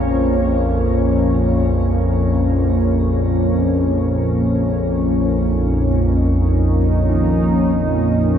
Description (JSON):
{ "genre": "dark ambient drone", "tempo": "free time", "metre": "none", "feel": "none", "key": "unclear", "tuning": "A4 = 439 Hz", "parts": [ { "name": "sweeping resonant pad", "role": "sustained chords", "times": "0.0-8.4 s", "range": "Bb3 to Db5", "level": "-19 LUFS", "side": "equal", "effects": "chorus, shimmer reverb" }, { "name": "warm grand piano", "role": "arpeggios", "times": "0.0-8.4 s", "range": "Eb3 to Ab3", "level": "-30 LUFS", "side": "right 5 dB", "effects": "none" }, { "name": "analog drone", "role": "drone", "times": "0.0-8.4 s", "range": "Bb1 to F2", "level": "-17 LUFS", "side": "equal", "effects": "chorus" } ], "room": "moderate huge ambient reverb, RT60 8.0 s", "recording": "dreamy mix soaked in reverb", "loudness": "-15 LUFS", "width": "side -8 dB against mid", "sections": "0.0-8.4 A section", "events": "none", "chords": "0.0 Bbm" }